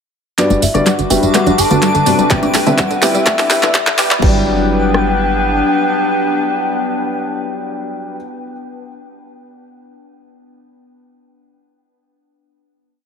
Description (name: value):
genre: progressive house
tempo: 125 BPM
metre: 4/4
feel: straight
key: G major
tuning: A4 = 440 Hz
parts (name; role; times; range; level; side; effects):
- evolving wavetable pad; sustained chords; 1.0-8.2 s; G3 to B4; -20 LUFS; left 2 dB; chorus, built-in reverb, sidechain pumping
- wide unison pluck; arpeggios; 0.4-4.4 s; D3 to G4; -19 LUFS; right 2 dB; sidechain pumping, tape echo
- dark grand piano; stabs; 0.4-8.2 s; G2 to G5; -18 LUFS; left 2 dB; sidechain pumping, tape echo
- deep house drum kit; drums; 0.4-4.3 s; crash cymbal, handclaps, hi-hat, tambourine; -17 LUFS; right 1 dB; sidechain pumping on hats, sidechain pumping on perc, sidechain pumping on cymbals
- twinkling granular texture; texture; 0.9-4.2 s; D6; -29 LUFS; right 2 dB; built-in reverb, sidechain pumping
- plucky analog bass; bass; 0.5-5.6 s; E1 to G2; -22 LUFS; right 1 dB; sidechain pumping
- woodblock and congas; percussion; 0.5-4.2 s; none; -23 LUFS; left 3 dB; sidechain pumping on perc
- soft octave-layered synth lead; melody; 0.6-8.2 s; E5 to A5; -19 LUFS; left 1 dB; chorus, sidechain pumping, dub echo
- big-room dance drum kit; drums; 2.3-5.1 s; kick drum, rim click; -16 LUFS; equal; none
room: moderate lush hall reverb, RT60 2.1 s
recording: high-pass filter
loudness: -12 LUFS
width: side -6 dB against mid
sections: 0.4-4.2 build; 4.2-8.1 final chord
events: build-up 0.4-4.2; drum fill 0.4-4.2; filter sweep on synth pluck 0.4-4.2; filter sweep on soft synth lead 0.4-4.2; filter sweep 0.4-4.2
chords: 0.4 Gmaj7; 2.3 Cmaj7; 3.3 Em; 4.2 Gmaj7